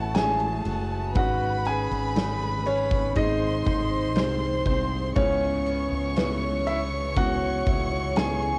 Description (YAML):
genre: pop ballad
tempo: 60 BPM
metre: 4/4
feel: straight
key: C# minor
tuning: A4 = 440 Hz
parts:
  - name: clear grand piano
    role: melody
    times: 0.0-8.6 s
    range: B#3 to G#5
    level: -30 LUFS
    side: equal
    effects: cassette tape
  - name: warm studio violin section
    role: second line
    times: 0.0-8.6 s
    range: A3 to C#6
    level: -34 LUFS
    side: equal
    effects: cassette tape
  - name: felt-muted upright piano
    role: accompaniment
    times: 0.0-8.6 s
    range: G#2 to B4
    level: -35 LUFS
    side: equal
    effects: cassette tape
  - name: picked steel-string acoustic guitar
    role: arpeggios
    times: 0.0-8.6 s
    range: G#2 to C#5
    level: -38 LUFS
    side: equal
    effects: none
  - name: fretless electric bass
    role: bass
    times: 0.0-8.6 s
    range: F#1 to C#2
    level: -33 LUFS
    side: equal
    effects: none
  - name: huge arena drum kit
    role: drums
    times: 0.1-8.6 s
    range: kick drum, ride cymbal, snare drum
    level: -32 LUFS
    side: equal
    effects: cassette tape
room: light reverb, small room ambience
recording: home recording on cassette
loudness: -25 LUFS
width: mono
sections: 0.0-8.6 A section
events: none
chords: 0.0 F#m7/A; 1.2 G#sus4; 3.2 G#; 5.2 C#m7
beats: 0.16 | 1.16 2.16 3.16 4.16 | 5.16 6.16 7.16 8.16